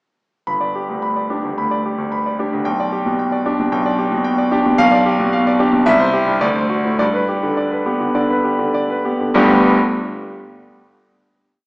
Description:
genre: classical, virtuoso piano study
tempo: 100-113 BPM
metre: 4/4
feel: rubato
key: G major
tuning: A4 = 440 Hz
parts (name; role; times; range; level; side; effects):
- bright concert grand piano; solo; 0.5-9.8 s; G1 to B5; -14 LUFS; equal; none
room: wet recital hall reverb, RT60 1.8 s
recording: heard from further back in the room, small speaker sound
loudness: -14 LUFS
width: side -29 dB against mid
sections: 0.5-9.3 A section; 9.3-11.6 final chord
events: none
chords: 0.5 G; 2.7 G/B; 4.8 G7/B; 5.9 C; 6.4 D7; 7.0 G

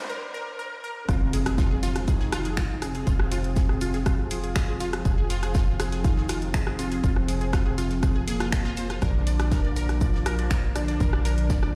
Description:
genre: melodic techno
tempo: 121 BPM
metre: 4/4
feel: straight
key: unclear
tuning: A4 = 445 Hz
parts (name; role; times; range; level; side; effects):
- fat analog lead; melody; 0.0-11.8 s; Bb3 to F4; -35 LUFS; equal; lush chorus, sidechain pumping, tape echo
- sweeping resonant pad; sustained chords; 0.0-11.8 s; F3 to Ab4; -38 LUFS; equal; chorus, sidechain pumping
- house drum kit; drums; 0.0-11.7 s; finger snaps, hi-hat, rim click, toms; -36 LUFS; equal; none
- riser and impact; sound effects; 0.0-3.1 s; none; -37 LUFS; equal; none
- unison pluck; arpeggios; 0.1-11.7 s; F4 to D5; -37 LUFS; equal; phaser, sidechain pumping, dub echo
- tight sequencer bass; bass; 1.1-11.8 s; F1 to Bb1; -31 LUFS; equal; sidechain pumping
- electronic kick drum; drums; 1.1-11.6 s; none; -26 LUFS; equal; none
- tight funk drum kit; drums; 1.1-11.6 s; hi-hat, shaker, snare drum; -47 LUFS; equal; high-pass filter on hats, high-pass filter on snare, high-pass filter on perc, high-pass filter on room
room: little or no reverb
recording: played on a big sound system in a bare room, stone room reverb, high-pass filter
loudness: -25 LUFS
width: mono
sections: 0.0-1.1 A section; 1.1-11.8 B section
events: build-up 0.0-1.1; break 0.1-1.1; drop 1.1-11.8; impact 1.1-3.1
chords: 0.0 Bb5; 1.1 Fm; 9.0 Bb

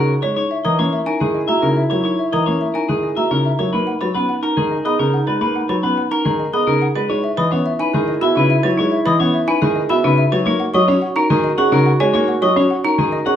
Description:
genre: classical, minimalist pattern music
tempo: 107 BPM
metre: 3/4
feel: straight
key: C# dorian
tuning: A4 = 440 Hz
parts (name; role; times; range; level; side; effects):
- clean electric guitar; melody; 0.0-13.4 s; G#4 to F#5; -21 LUFS; left 4 dB; none
- warm clarinet; second line; 0.0-13.4 s; D#4 to F#4; -25 LUFS; right 3 dB; none
- warm concert grand piano; accompaniment; 0.0-13.4 s; C#3 to C#4; -19 LUFS; equal; none
- folk marimba with medium hard mallets; arpeggios; 0.0-13.4 s; C#4 to C#5; -21 LUFS; right 3 dB; none
- xylophone with soft rubber mallets; arpeggios; 0.5-13.4 s; D#5 to C#6; -24 LUFS; left 2 dB; none
room: wet large studio reverb, RT60 0.9 s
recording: heard from further back in the room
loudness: -15 LUFS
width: side -9 dB against mid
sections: 0.0-13.4 A section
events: none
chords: 0.4 F#9; 3.7 B69; 7.1 C#m9; 10.5 D#m7

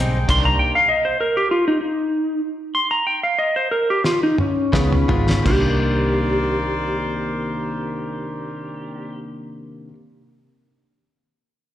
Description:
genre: straight-eighth soul blues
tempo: 81-101 BPM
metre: 4/4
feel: swing 53% on 16ths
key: C minor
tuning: A4 = 440 Hz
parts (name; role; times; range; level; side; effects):
- bright tine electric piano; accompaniment; 0.0-0.8, 4.7-9.9 s; Bb3 to Cb6; -28 LUFS; right 3 dB; phaser, slapback echo
- brilliant horn section; sustained chords; 0.0-0.8, 4.7-9.2 s; Ab4 to Cb6; -29 LUFS; left 1 dB; none
- direct-recorded clean electric guitar; stabs; 0.0-0.5, 4.7-9.9 s; C3 to F4; -28 LUFS; left 4 dB; slapback echo
- vintage muted fingered electric bass; bass; 0.0-0.5, 4.7-9.9 s; Ab1 to Db2; -22 LUFS; equal; none
- clean lap steel guitar; melody; 0.3-9.2 s; Db4 to C6; -19 LUFS; equal; slapback echo
- cloth-damped thuddy drum kit; drums; 0.3-5.6 s; crash cymbal, hi-hat, kick drum, snare drum, toms; -23 LUFS; equal; none
room: light reverb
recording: live gig heard through the venue's PA, recital hall reverb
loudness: -17 LUFS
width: side -12 dB against mid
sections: 0.0-5.5 A section; 5.5-8.4 B section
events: slowing down 0.3-5.5; drum fill 4.0-5.5; tine electric piano fill 4.4-5.5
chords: 0.3 Cm9; 4.7 Db7; 5.5 Cm9

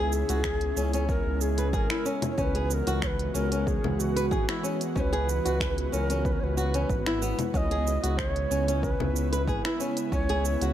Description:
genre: organic downtempo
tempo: 93 BPM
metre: 4/4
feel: swing 53% on 16ths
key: unclear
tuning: A4 = 441 Hz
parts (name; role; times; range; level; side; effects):
- mellow Native American-style cedar flute; melody; 0.0-10.7 s; F#4 to F#5; -32 LUFS; equal; ping-pong delay, shimmer reverb
- airy breathy pad; sustained chords; 0.0-10.7 s; C#3 to F#4; -34 LUFS; equal; chorus, sidechain pumping, shimmer reverb
- flamenco guitar; arpeggios; 0.0-10.7 s; B3 to B4; -32 LUFS; left 1 dB; ping-pong delay, shimmer reverb
- smooth synth bass; bass; 0.0-10.7 s; G#1 to C#2; -29 LUFS; equal; sidechain pumping
- quartz singing bowl; texture; 0.0-10.7 s; none; barely audible; none; none
- deep house drum kit; drums; 0.1-10.7 s; congas, finger snaps, hi-hat, shaker; -34 LUFS; equal; none
- electronic kick drum; drums; 0.4-10.3 s; none; -31 LUFS; equal; none
room: light reverb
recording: none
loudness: -25 LUFS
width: side -11 dB against mid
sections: 0.0-10.7 A section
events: none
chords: 0.0 Eadd9

